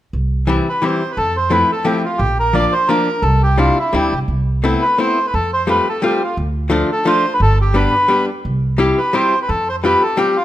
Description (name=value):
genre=musette waltz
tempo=173 BPM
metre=3/4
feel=swing 55% on 8ths, rubato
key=C major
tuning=A4 = 440 Hz
part: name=upright bass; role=bass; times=0.1-9.9 s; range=G1 to F2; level=-18 LUFS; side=right 1 dB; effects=none
part: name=archtop guitar, miked and amplified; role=accompaniment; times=0.5-10.4 s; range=E3 to G4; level=-18 LUFS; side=left 2 dB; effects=none
part: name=bandoneon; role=melody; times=0.7-10.4 s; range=E4 to D5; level=-16 LUFS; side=equal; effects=none
room=light reverb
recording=minimal, uncompressed stereo recording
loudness=-14 LUFS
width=side -13 dB against mid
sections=0.1-10.4 A section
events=none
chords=0.1 C; 1.2 Fmaj7; 2.2 Bb; 3.2 Cadd9; 4.3 Amadd9/C; 5.3 Fadd9; 6.4 Dm; 7.4 G; 8.4 C; 9.5 Fsus2